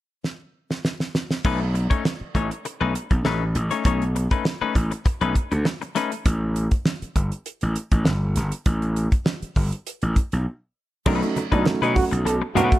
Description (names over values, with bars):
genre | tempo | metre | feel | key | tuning
funk | 100 BPM | 4/4 | straight | B mixolydian | A4 = 440 Hz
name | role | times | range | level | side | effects
damped 70s drum kit | drums | 0.2-12.8 s | crash cymbal, hi-hat, kick drum, snare drum | -23 LUFS | equal | none
semi-hollow electric guitar | accompaniment | 1.4-6.2, 11.1-12.8 s | A3 to C#5 | -26 LUFS | left 7 dB | none
gritty slap bass | bass | 1.4-12.7 s | G1 to B2 | -23 LUFS | equal | overdrive
warm upright piano | stabs | 11.1-12.3 s | F#3 to D#4 | -25 LUFS | right 3 dB | plate reverb
congas | percussion | 11.1-12.7 s | none | -28 LUFS | right 4 dB | none
clear trombone | second line | 11.5-12.8 s | D4 to A4 | -24 LUFS | right 4 dB | none
room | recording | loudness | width
light reverb | lossy compression artefacts | -21 LUFS | side -15 dB against mid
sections
0.0-1.4 A section; 1.4-11.1 B section; 11.1-12.8 C section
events
drum fill 0.2-1.4; break 10.5-11.1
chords
0.0 N.C.; 1.4 B9; 6.3 N.C.; 11.1 B9